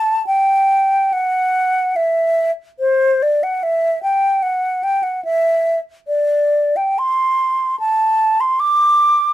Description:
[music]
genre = classical, free, expressive piece for unaccompanied flute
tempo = 72 BPM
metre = 3/4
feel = uneven beats, rubato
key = E minor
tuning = A4 = 440 Hz
[part]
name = mellow hollow silver concert flute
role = solo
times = 0.0-9.3 s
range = C5 to D6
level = -14 LUFS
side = equal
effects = none
[sound]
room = light reverb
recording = minimal, uncompressed stereo recording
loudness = -14 LUFS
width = side -13 dB against mid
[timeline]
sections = 0.0-9.3 A section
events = none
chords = none

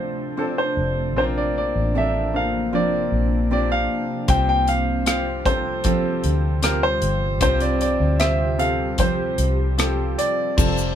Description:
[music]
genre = pop ballad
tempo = 77 BPM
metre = 4/4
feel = straight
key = unclear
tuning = A4 = 441 Hz
[part]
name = clear baby grand piano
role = melody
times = 0.0-11.0 s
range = A4 to G5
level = -23 LUFS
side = equal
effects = none
[part]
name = clear grand piano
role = accompaniment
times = 0.0-11.0 s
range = G2 to C5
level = -27 LUFS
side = left 1 dB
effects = none
[part]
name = ethereal airy pad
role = sustained chords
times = 0.0-11.0 s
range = C3 to G4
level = -29 LUFS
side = equal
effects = ensemble chorus, built-in reverb
[part]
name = fingerpicked steel-string acoustic guitar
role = arpeggios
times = 0.0-11.0 s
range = C3 to Bb4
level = -29 LUFS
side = right 5 dB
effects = none
[part]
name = vintage muted fingered electric bass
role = bass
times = 0.0-11.0 s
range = F1 to D2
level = -23 LUFS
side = equal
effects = none
[part]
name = modern studio drum kit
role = drums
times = 4.3-10.8 s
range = crash cymbal, hi-hat, kick drum, rim click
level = -23 LUFS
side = left 1 dB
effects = none
[part]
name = egg shaker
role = percussion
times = 10.6-11.0 s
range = none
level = -33 LUFS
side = left 8 dB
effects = none
[sound]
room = moderate small room reverb, RT60 0.5 s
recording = band playing live in one room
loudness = -18 LUFS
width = side -9 dB against mid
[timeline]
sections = 0.0-10.6 A section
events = none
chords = 0.0 Dm7; 1.2 Bbadd9; 4.3 Csus4

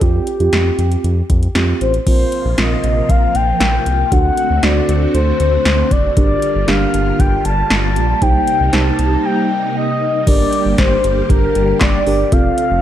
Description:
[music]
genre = synth-pop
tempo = 117 BPM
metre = 4/4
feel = straight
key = G minor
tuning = A4 = 440 Hz
[part]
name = mellow horn-like synth lead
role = melody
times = 0.0-12.8 s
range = G4 to A5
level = -18 LUFS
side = left 3 dB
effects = chorus, phaser
[part]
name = muted felt-like synth keys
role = accompaniment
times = 0.0-12.8 s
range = C4 to C5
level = -21 LUFS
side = right 6 dB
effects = chorus
[part]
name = round analog bass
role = bass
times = 0.0-12.8 s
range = F1 to F2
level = -17 LUFS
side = equal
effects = none
[part]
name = electro analog drum machine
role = drums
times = 0.0-12.7 s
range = crash cymbal, handclaps, hi-hat, kick drum, snare drum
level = -17 LUFS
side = equal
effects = none
[part]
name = phased string machine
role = sustained chords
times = 2.3-12.8 s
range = C3 to G4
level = -21 LUFS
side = equal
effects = ensemble chorus, phaser
[sound]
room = light reverb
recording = none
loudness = -12 LUFS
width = side -11 dB against mid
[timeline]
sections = 0.0-2.1 A section; 2.1-10.3 B section; 10.3-12.8 C section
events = break 9.2-10.3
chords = 0.0 Fsus2; 2.1 Bbsus2; 4.1 D7; 6.2 Gm7; 8.2 Cm7; 10.3 Gm

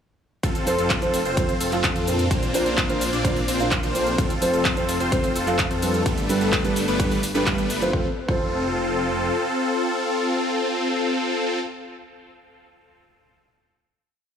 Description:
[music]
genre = EDM, festival progressive house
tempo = 128 BPM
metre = 4/4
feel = straight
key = F major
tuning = A4 = 440 Hz
[part]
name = supersaw chords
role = riff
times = 0.4-11.6 s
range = G3 to D5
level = -24 LUFS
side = left 1 dB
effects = sidechain pumping, dub echo
[part]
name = detuned saw bass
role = bass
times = 0.4-9.3 s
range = F1 to F2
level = -30 LUFS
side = equal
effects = sidechain pumping
[part]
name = big-room dance drum kit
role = drums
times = 0.4-7.9 s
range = handclaps, hi-hat, ride cymbal, shaker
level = -28 LUFS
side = equal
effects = none
[part]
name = electronic kick drum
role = drums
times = 0.4-8.4 s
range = none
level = -25 LUFS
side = equal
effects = none
[part]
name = dark concert grand piano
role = accompaniment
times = 0.7-11.6 s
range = Bb2 to F5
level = -26 LUFS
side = right 2 dB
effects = sidechain pumping, dub echo
[sound]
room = light reverb, digital ambience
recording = small room reverb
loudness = -20 LUFS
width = side -8 dB against mid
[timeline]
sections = 0.4-7.9 drop; 7.9-11.7 final chord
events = drop 0.4-7.9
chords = 0.4 F; 2.3 Bbadd9; 4.2 F; 6.1 Gadd9; 7.9 F

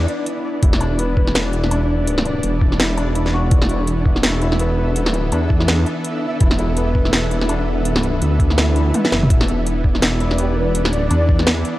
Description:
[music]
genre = half-time drum and bass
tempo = 166 BPM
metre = 4/4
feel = swing 58% on 16ths, half-time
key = unclear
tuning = A4 = 438 Hz
[part]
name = bowed-like drone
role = sustained chords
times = 0.1-11.8 s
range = E3 to A4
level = -26 LUFS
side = right 1 dB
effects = built-in reverb, vintage 12-bit sampler grit, sidechain pumping
[part]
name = felt-muted upright piano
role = arpeggios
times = 0.0-11.8 s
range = B3 to B4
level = -26 LUFS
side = left 2 dB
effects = analog delay
[part]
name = dark detuned saw bass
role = bass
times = 0.0-11.6 s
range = E1 to E2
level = -19 LUFS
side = equal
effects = none
[part]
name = flickering grainy texture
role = texture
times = 0.0-11.8 s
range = D4 to E5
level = -26 LUFS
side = equal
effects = built-in reverb
[part]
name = drum and bass drum kit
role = drums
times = 0.1-11.7 s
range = hi-hat, snare drum, toms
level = -20 LUFS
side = equal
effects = none
[part]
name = electronic kick drum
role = drums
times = 0.6-11.4 s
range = none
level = -16 LUFS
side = equal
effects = none
[part]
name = breathy flute-like synth lead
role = melody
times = 10.4-11.4 s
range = G4 to D5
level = -25 LUFS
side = equal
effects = analog chorus, analog delay
[sound]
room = light reverb, digital ambience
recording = dry, gritty hardware recording, cassette tape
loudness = -15 LUFS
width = side -16 dB against mid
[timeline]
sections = 0.0-11.8 A section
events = drum fill 8.9-9.3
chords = 0.0 E5

